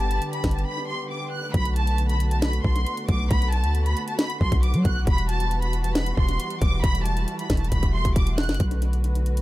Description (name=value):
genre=hip hop, trap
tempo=136 BPM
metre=4/4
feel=half-time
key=B phrygian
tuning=A4 = 440 Hz
part: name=rich studio violin section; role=melody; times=0.0-8.6 s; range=A5 to F#6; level=-30 LUFS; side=right 1 dB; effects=analog delay
part: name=muted studio string section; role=sustained chords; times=0.0-9.4 s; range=D3 to B4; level=-32 LUFS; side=equal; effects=none
part: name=long sustained 808-style bass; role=bass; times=0.0-9.4 s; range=E1 to F#3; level=-23 LUFS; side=equal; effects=none
part: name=trap drum kit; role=drums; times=0.0-9.4 s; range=hi-hat, kick drum, snare drum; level=-24 LUFS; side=equal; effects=analog delay
room=studio reverb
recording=echo-heavy mix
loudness=-21 LUFS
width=side -17 dB against mid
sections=0.0-8.6 A section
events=break 0.7-1.5; drum fill 7.7-8.6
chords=0.0 G; 1.5 Bm7; 5.1 Emadd9; 8.6 Bm7